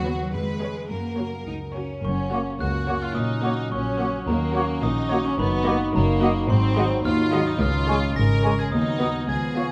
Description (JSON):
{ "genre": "cinematic", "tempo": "108 BPM", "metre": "2/4", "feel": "straight", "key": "F# major", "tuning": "A4 = 441 Hz", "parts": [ { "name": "rich studio violin section", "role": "melody", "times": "0.0-9.7 s", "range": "B4 to D#5", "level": "-40 LUFS", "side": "equal", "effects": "none" }, { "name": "rich studio violin section", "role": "second line", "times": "0.0-9.7 s", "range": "A#3 to B4", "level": "-32 LUFS", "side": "equal", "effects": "none" }, { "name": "rich studio viola section", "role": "accompaniment", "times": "0.0-9.7 s", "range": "G#3 to G#4", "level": "-32 LUFS", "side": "equal", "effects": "none" }, { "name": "concert harp", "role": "arpeggios", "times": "0.0-9.7 s", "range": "E#2 to B4", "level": "-34 LUFS", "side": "equal", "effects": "none" }, { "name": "clear studio cello section", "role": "bass", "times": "0.0-9.7 s", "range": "C#2 to D#4", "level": "-31 LUFS", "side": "equal", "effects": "none" }, { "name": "clear studio double bass section", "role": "bass", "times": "0.0-9.7 s", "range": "F#1 to F#2", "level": "-30 LUFS", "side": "equal", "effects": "none" }, { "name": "glockenspiel with soft plastic mallets", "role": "melody", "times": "2.0-9.7 s", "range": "A#5 to A#6", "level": "-34 LUFS", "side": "equal", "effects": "none" }, { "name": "mellow French horn section", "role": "sustained chords", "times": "2.0-9.7 s", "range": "E#3 to D#4", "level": "-31 LUFS", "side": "equal", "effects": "none" }, { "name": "hollow concert flute", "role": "second line", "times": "2.3-9.6 s", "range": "E#5 to G#5", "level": "-36 LUFS", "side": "equal", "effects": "none" }, { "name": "mellow cor anglais", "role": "second line", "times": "2.3-9.7 s", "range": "C#5 to D#5", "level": "-36 LUFS", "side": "equal", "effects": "none" }, { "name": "warm clarinet", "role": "second line", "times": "2.3-9.7 s", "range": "G#3 to B3", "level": "-36 LUFS", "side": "equal", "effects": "none" } ], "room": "light reverb", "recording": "none", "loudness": "-23 LUFS", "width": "mono", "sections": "0.0-2.0 A section; 2.0-9.7 A section", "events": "none", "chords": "0.3 C#7/E#; 0.9 F#; 3.2 F#/A#; 4.3 D#m7; 5.4 D#m/F#; 6.5 G#7; 7.6 C#; 8.7 B/D#", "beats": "0.33 | 0.90 1.47 | 2.04 2.60 | 3.16 3.72 | 4.28 4.83 | 5.39 5.95 | 6.50 7.05 | 7.61 8.16 | 8.72 9.28" }